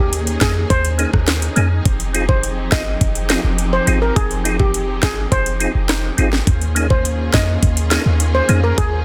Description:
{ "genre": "dancehall", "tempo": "104 BPM", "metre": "4/4", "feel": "straight", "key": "F minor", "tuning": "A4 = 442 Hz", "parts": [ { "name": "steel pan", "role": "melody", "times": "0.0-8.9 s", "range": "G4 to Eb5", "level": "-25 LUFS", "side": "equal", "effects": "tape echo" }, { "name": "warm studio string section", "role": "sustained chords", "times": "0.0-9.0 s", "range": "Eb3 to Ab4", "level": "-28 LUFS", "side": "equal", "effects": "sidechain pumping" }, { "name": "clean 808-style bass", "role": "bass", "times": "0.0-9.0 s", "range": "F1 to F2", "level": "-21 LUFS", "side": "equal", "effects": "none" }, { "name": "island pop drum kit", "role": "drums", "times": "0.1-8.9 s", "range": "hi-hat, kick drum, rim click, snare drum", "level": "-21 LUFS", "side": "equal", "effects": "none" }, { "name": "percussive tonewheel organ", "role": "accompaniment", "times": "0.4-8.6 s", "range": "Bb3 to Ab4", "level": "-25 LUFS", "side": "equal", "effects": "chorus vibrato, fast rotary speaker, sidechain pumping" }, { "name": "hollow square pluck", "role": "second line", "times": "5.9-6.7 s", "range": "Eb4", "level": "-32 LUFS", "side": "equal", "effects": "chorus, tape echo" } ], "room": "little or no reverb", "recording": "dense, heavily limited modern master", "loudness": "-17 LUFS", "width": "mono", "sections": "0.0-9.0 A section", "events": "none", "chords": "0.0 Eb7sus4; 1.9 Fm7; 6.5 Eb7sus4" }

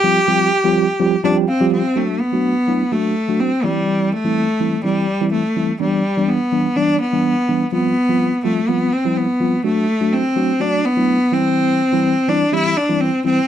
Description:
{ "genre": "pop", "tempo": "125 BPM", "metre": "4/4", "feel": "straight", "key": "unclear", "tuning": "A4 = 440 Hz", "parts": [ { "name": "clear cello", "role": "melody", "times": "0.0-13.5 s", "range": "G3 to G4", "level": "-17 LUFS", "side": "equal", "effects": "slapback echo" }, { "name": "mellow tine electric piano", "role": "accompaniment", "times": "0.0-13.4 s", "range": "E3 to A5", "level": "-19 LUFS", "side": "equal", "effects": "medium stereo tremolo" } ], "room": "light reverb", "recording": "dry, close 1970s-style studio recording", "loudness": "-15 LUFS", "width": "side -10 dB against mid", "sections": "0.0-2.0 A section; 2.0-13.5 B section", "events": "drop 0.0-2.0; tine electric piano fill 1.0-2.0", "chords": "0.0 Fsus2; 2.0 D; 3.6 C; 5.8 G6; 7.7 Fsus2; 9.6 D; 11.3 C" }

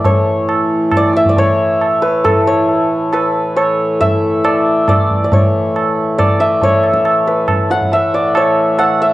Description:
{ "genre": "indian classical, Hindustani", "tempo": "137 BPM", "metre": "3/4", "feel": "straight", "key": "unclear", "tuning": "A4 = 440 Hz", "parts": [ { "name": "santur", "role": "melody", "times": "0.0-9.1 s", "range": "A4 to F#5", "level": "-14 LUFS", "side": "equal", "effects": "cassette tape" }, { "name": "hand-pumped harmonium", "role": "drone", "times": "0.0-9.1 s", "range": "A2 to E3", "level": "-18 LUFS", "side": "equal", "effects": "none" }, { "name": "tabla", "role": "percussion", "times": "0.0-9.0 s", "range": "none", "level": "-16 LUFS", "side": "right 1 dB", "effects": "none" } ], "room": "moderate spring reverb, RT60 1.3 s, small room ambience", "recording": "home recording on cassette", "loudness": "-11 LUFS", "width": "side -16 dB against mid", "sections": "0.1-9.1 A section", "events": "none", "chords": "none" }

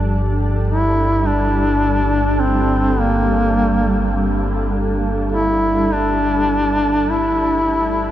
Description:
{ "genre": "dark ambient drone", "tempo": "free time", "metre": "none", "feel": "none", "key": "G minor", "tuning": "A4 = 440 Hz", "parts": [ { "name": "granular cloud pad", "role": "sustained chords", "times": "0.0-8.1 s", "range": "G3 to A4", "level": "-22 LUFS", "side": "equal", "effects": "built-in reverb" }, { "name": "gamelan-type bossed gongs", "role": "arpeggios", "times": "0.0-5.7 s", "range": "F3", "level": "-37 LUFS", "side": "right 1 dB", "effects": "none" }, { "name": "deep rumbling drone", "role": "drone", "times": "0.0-8.1 s", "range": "G1 to G2", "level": "-21 LUFS", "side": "equal", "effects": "built-in reverb, lush chorus" }, { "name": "warm duduk", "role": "melody", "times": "0.7-8.1 s", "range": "Bb3 to E4", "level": "-17 LUFS", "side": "equal", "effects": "diffuse ambient delay" } ], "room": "wet huge ambient reverb, RT60 7.4 s", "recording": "worn, warbling old tape, cassette tape, warbly pitch drift", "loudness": "-15 LUFS", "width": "side -12 dB against mid", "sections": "0.0-8.1 A section", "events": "filter sweep on synth drone 0.0-8.1; fade-out 6.3-8.1", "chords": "0.0 Gsus2" }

